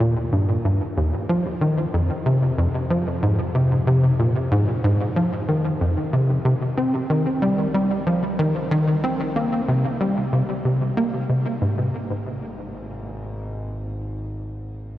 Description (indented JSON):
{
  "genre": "ambient, sequencer-driven space music",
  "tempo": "93 BPM",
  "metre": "4/4",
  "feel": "straight",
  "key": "unclear",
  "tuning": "A4 = 441 Hz",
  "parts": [
    { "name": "tight sequencer bass", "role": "riff", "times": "0.0-11.9 s", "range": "Eb2 to C4", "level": "-19 LUFS", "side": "equal", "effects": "ensemble chorus, tape echo" },
    { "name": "analog drone", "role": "bass", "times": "0.0-13.5 s", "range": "Ab1 to F2", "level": "-35 LUFS", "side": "equal", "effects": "chorus" }
  ],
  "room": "wet huge ambient reverb, RT60 7.4 s",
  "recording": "worn, warbling old tape, cassette tape, warbly pitch drift",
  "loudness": "-19 LUFS",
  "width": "side -14 dB against mid",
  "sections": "0.0-11.6 A section; 11.6-14.2 B section",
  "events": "none",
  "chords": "0.0 Eb; 1.3 F5; 6.5 C5; 11.6 N.C."
}